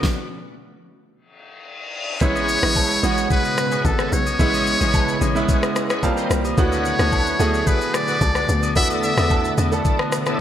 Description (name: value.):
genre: amapiano.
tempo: 110 BPM.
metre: 4/4.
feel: straight.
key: A major.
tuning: A4 = 439 Hz.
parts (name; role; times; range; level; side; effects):
clear baby grand piano; accompaniment; 0.0-10.4 s; G3 to A5; -24 LUFS; right 4 dB; wide subtle chorus.
smooth R&B drum kit; drums; 0.0-10.4 s; kick drum, rim click, shaker, snare drum; -22 LUFS; left 1 dB; gated reverb.
reverse cymbal; sound effects; 1.4-2.2 s; none; -30 LUFS; left 4 dB; none.
trumpet with metal mute; melody; 2.2-9.5 s; A4 to E5; -22 LUFS; left 1 dB; digital delay.
string machine, cellos; sustained chords; 2.2-10.4 s; C#3 to G#4; -28 LUFS; left 1 dB; ensemble chorus.
bright tonewheel organ; stabs; 2.2-10.4 s; D4 to D#5; -30 LUFS; left 2 dB; overdrive, chorus vibrato, slow rotary speaker, digital delay.
hollow log drum bass; bass; 2.2-9.8 s; G#1 to E2; -23 LUFS; equal; none.
agogo bells and woodblock; percussion; 2.4-10.4 s; none; -31 LUFS; left 4 dB; none.
room: moderate lush hall reverb, RT60 2.1 s.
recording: bright 1980s-style digital production.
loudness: -17 LUFS.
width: side -10 dB against mid.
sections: 0.0-2.2 A section; 2.2-10.4 B section.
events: stop 0.0-2.2; reverse cymbal 1.4-2.2; drop 2.2-10.4.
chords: 0.0 N.C.; 2.2 Amaj9; 6.0 D#6; 6.6 D6; 8.8 E7sus4.